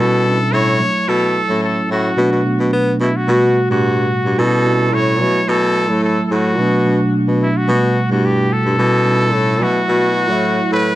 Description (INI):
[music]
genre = afrobeats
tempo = 109 BPM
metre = 4/4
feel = straight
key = unclear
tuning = A4 = 438 Hz
[part]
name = clear trumpet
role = melody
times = 0.0-11.0 s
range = E4 to C#5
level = -19 LUFS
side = left 1 dB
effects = digital delay
[part]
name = bell-like tine electric piano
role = accompaniment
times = 0.0-11.0 s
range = A2 to F#4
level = -17 LUFS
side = right 2 dB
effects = phaser
[part]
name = warm baritone saxophone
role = bass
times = 0.0-10.9 s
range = G2 to B3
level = -17 LUFS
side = left 1 dB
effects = none
[sound]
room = light reverb, small room ambience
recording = dark, warm production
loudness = -13 LUFS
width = side -15 dB against mid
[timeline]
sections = 0.0-11.0 A section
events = none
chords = 0.0 A7/B; 0.8 F#m7/B; 2.2 Bm7; 3.3 Gmaj7; 4.4 A7/B; 5.2 F#m7/B; 6.6 Bm7; 7.7 Gmaj7; 8.8 A7/B; 9.6 F#m7/B